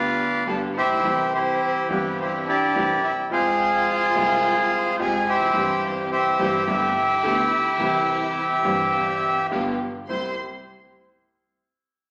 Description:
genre	tango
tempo	106 BPM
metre	4/4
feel	rubato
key	C major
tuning	A4 = 435 Hz
part	bandoneon	melody	0.0-10.4 s	E4 to A5	-23 LUFS	equal	none
part	warm studio violin section	second line	0.0-10.4 s	B3 to C6	-35 LUFS	equal	none
part	bright baby grand piano	accompaniment	0.0-10.3 s	G1 to G5	-30 LUFS	equal	none
part	dark chamber string section	stabs	0.0-10.3 s	G3 to G5	-36 LUFS	equal	none
room	wet large studio reverb, RT60 1.2 s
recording	none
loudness	-22 LUFS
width	mono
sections	0.0-10.1 A section; 10.1-12.1 B section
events	none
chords	0.0 G; 1.0 C; 3.3 Fmadd9; 5.6 C/G; 6.7 Gadd9; 7.8 C; 9.5 G7; 10.1 C

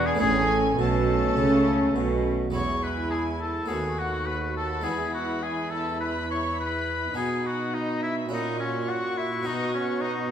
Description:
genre	classical, baroque-style concerto movement with solo episodes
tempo	104 BPM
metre	4/4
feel	straight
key	E major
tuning	A4 = 438 Hz
part	clear oboe	melody	0.0-10.3 s	C#4 to C#5	-30 LUFS	left 2 dB	none
part	rich chamber violin section	second line	0.0-10.1 s	C#4 to C#6	-32 LUFS	left 3 dB	none
part	dark chamber viola section	accompaniment	0.0-10.3 s	A3 to F#4	-31 LUFS	right 1 dB	none
part	harpsichord	accompaniment	0.0-10.3 s	D#2 to F#4	-32 LUFS	right 1 dB	none
part	warm chamber cello section	bass	0.0-10.3 s	D#2 to C#3	-30 LUFS	right 3 dB	none
part	warm studio double bass section	bass	0.0-2.5 s	E1 to C#2	-30 LUFS	right 4 dB	none
part	rich chamber violin section	melody	0.1-10.3 s	G#5 to C#6	-37 LUFS	left 1 dB	none
room	wet recital hall reverb, RT60 1.6 s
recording	minimal, uncompressed stereo recording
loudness	-24 LUFS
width	side -9 dB against mid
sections	0.0-2.5 A section; 2.5-10.3 B section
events	none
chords	0.2 A; 2.5 E; 3.7 B7/D#; 4.9 E; 7.2 B; 8.3 F#7/A#; 9.5 B5

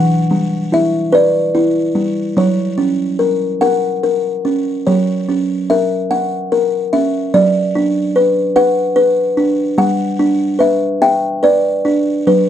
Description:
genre	children's music, lullaby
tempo	48 BPM (dotted quarters)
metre	6/8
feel	rubato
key	unclear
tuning	A4 = 440 Hz
part	buzzing kalimba	solo	0.0-12.5 s	E3 to G5	-12 LUFS	equal	none
room	little or no reverb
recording	dry, close 1970s-style studio recording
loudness	-12 LUFS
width	side -10 dB against mid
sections	0.0-12.5 A section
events	none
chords	0.0 Em; 2.4 F#; 7.3 Bm/F#; 9.8 G

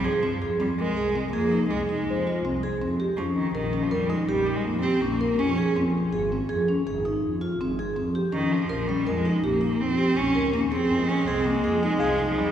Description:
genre	contemporary instrumental, chamber music in an uneven meter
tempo	163 BPM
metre	7/4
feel	straight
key	F minor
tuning	A4 = 440 Hz
part	rich cello	melody	0.0-12.5 s	Eb3 to Db4	-27 LUFS	right 1 dB	none
part	vibraphone with medium mallets	arpeggios	0.0-12.4 s	C4 to Bb4	-26 LUFS	equal	none
part	dark double bass	bass	0.0-12.5 s	Ab1 to Ab2	-29 LUFS	equal	none
part	celesta	texture	0.8-2.8, 12.0-12.5 s	Bb4 to F5	-35 LUFS	left 6 dB	none
part	warm viola	second line	10.9-12.5 s	Ab3	-29 LUFS	equal	none
room	wet cathedral reverb, RT60 5.5 s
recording	recorded in a church or concert hall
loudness	-22 LUFS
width	side -9 dB against mid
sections	0.6-12.5 A section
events	none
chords	0.0 Fm; 0.6 Fm7; 3.2 Eb7(no3); 5.8 Dbmaj7 (rootless); 8.3 Eb7(no3); 10.9 Fm7

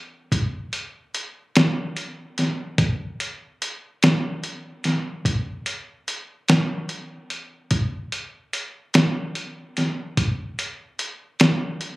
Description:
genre	blues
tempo	49 BPM (dotted quarters)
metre	12/8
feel	straight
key	none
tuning	none
part	lo-fi sampler-style drum kit	drums	0.3-12.0 s	hi-hat, kick drum, snare drum	-20 LUFS	equal	none
room	light reverb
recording	recorded on a phone in the room, club reverb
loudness	-22 LUFS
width	side -20 dB against mid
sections	0.0-12.0 A section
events	none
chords	none

